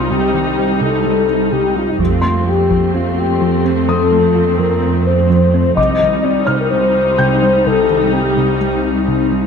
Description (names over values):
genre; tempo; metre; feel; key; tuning
cinematic, hybrid orchestral and electronic film score; 127 BPM; 4/4; straight; C dorian; A4 = 442 Hz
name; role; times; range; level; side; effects
rich symphonic viola section; accompaniment; 0.0-9.5 s; G3 to Eb4; -21 LUFS; right 2 dB; none
dark French horn section; sustained chords; 0.0-8.8 s; Eb4 to Eb5; -16 LUFS; left 4 dB; none
glassy FM pad; sustained chords; 0.0-9.5 s; F3 to C5; -19 LUFS; equal; ensemble chorus, built-in reverb, phaser
rich symphonic cello section; bass; 0.0-9.5 s; C2 to F2; -19 LUFS; right 3 dB; none
felt-muted upright piano; texture; 0.0-9.5 s; G5 to G6; -26 LUFS; left 2 dB; ping-pong delay
thumb-piano-like synth pluck; arpeggios; 0.1-9.5 s; C3 to F4; -22 LUFS; left 1 dB; chorus, ping-pong delay
taiko ensemble; drums; 2.0-2.9, 5.8-6.7 s; none; -26 LUFS; right 2 dB; none
room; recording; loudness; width
moderate scoring stage reverb, RT60 1.9 s; close, detailed microphones; -12 LUFS; side -6 dB against mid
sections
0.0-9.5 A section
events
none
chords
0.0 Cm; 2.0 F; 5.8 Cm